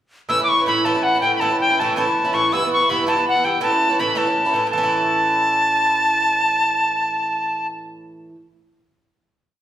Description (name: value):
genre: celtic folk, Celtic jig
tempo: 109 BPM (dotted quarters)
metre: 6/8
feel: straight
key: A mixolydian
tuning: A4 = 441 Hz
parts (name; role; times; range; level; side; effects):
- bright reedy wooden whistle; melody; 0.3-7.7 s; F#5 to E6; -17 LUFS; equal; none
- Irish bouzouki; accompaniment; 0.3-8.5 s; G2 to E4; -22 LUFS; right 2 dB; none
room: wet large studio reverb, RT60 1.2 s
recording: band playing live in one room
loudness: -16 LUFS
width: side -11 dB against mid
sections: 0.3-4.7 A section; 4.7-6.9 final chord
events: none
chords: 0.3 A; 2.5 Em; 3.6 A